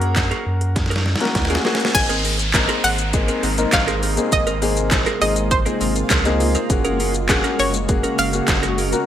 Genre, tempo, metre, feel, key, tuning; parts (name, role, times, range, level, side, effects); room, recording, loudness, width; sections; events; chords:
dance-pop; 101 BPM; 4/4; straight; Ab mixolydian; A4 = 440 Hz
analog pluck; melody; 0.0-9.1 s; C5 to Ab5; -22 LUFS; right 1 dB; chorus, digital delay
clear grand piano; accompaniment; 0.0-9.1 s; Bb3 to Bb4; -23 LUFS; left 3 dB; sidechain pumping
direct-recorded clean electric guitar; riff; 0.0-9.0 s; C4 to Bb4; -27 LUFS; right 6 dB; analog chorus
warm sub bass; bass; 0.0-8.9 s; Gb1 to Gb2; -23 LUFS; equal; sidechain pumping
pop drum kit; drums; 0.0-9.1 s; crash cymbal, handclaps, hi-hat, kick drum, shaker, snare drum; -20 LUFS; equal; gated reverb
shimmering ambient pad; sustained chords; 2.8-9.1 s; C3 to Gb4; -26 LUFS; equal; chorus, built-in reverb, sidechain pumping
downlifter; sound effects; 1.9-6.7 s; -28 LUFS; right 1 dB
group handclap; percussion; 2.5-8.6 s; -34 LUFS; right 5 dB
moderate plate reverb, RT60 1.4 s; bright 1980s-style digital production; -16 LUFS; side -10 dB against mid
0.0-1.9 A section; 1.9-9.1 B section
drum fill 0.8-1.9
0.0 Gbadd9; 1.9 Abadd9; 6.7 Gbadd9